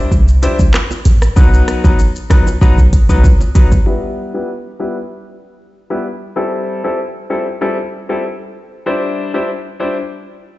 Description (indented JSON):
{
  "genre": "dancehall",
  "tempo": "96 BPM",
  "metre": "4/4",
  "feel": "straight",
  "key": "E minor",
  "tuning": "A4 = 438 Hz",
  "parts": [
    { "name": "bright grand piano", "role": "accompaniment", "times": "0.0-10.0 s", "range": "F#3 to C5", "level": "-19 LUFS", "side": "left 2 dB", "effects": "low-pass filter" },
    { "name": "clean 808-style bass", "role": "bass", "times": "0.1-3.8 s", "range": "A1 to C2", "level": "-11 LUFS", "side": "equal", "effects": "none" },
    { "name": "afro-pop drum kit", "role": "drums", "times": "0.1-3.9 s", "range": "handclaps, hi-hat, kick drum, rim click, shaker", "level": "-12 LUFS", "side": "equal", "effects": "none" },
    { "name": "bongos", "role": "percussion", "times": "0.7-3.7 s", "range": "none", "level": "-27 LUFS", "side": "right 5 dB", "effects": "none" }
  ],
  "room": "digital ambience",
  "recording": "played on a big sound system in a bare room, stone room reverb, nothing above 7.9 kHz",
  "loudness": "-12 LUFS",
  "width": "side -18 dB against mid",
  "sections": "0.0-3.9 A section; 3.9-10.6 B section",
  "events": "drum fill 2.6-3.9; filter sweep on grand piano 3.9-10.6",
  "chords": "0.0 Cadd9; 1.4 B; 3.9 Em; 6.4 Am7; 8.9 Cadd9"
}